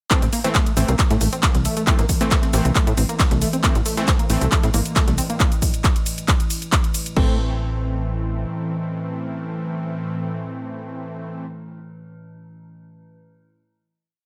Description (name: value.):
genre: driving peak-time techno.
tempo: 136 BPM.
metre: 4/4.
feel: straight.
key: A minor.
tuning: A4 = 440 Hz.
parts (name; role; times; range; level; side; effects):
tight sequenced synth; riff; 0.1-7.4 s; A3 to C4; -30 LUFS; equal; chorus, tube saturation, sidechain pumping, dub echo.
supersaw stab; stabs; 0.1-4.5, 7.2-11.5 s; E3 to C4; -30 LUFS; equal; sidechain pumping, digital delay.
metallic inharmonic drone; drone; 0.5-11.5 s; A2 to E3; -33 LUFS; equal; chorus, built-in reverb, phaser, sidechain pumping.
breakbeat sampler-style drum kit; drums; 0.1-5.3 s; hi-hat, snare drum; -38 LUFS; equal; none.
electronic kick drum; drums; 0.1-7.3 s; none; -22 LUFS; equal; none.
techno drum kit; drums; 0.1-7.3 s; crash cymbal, handclaps, hi-hat, ride cymbal, shaker; -26 LUFS; equal; none.
tight sequencer bass; bass; 0.2-8.4 s; A1 to A2; -24 LUFS; equal; sidechain pumping.
room: light reverb.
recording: none.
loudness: -20 LUFS.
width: mono.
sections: 0.1-7.2 drop; 7.2-10.7 final chord.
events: drop 0.1-7.2.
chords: 0.1 Am.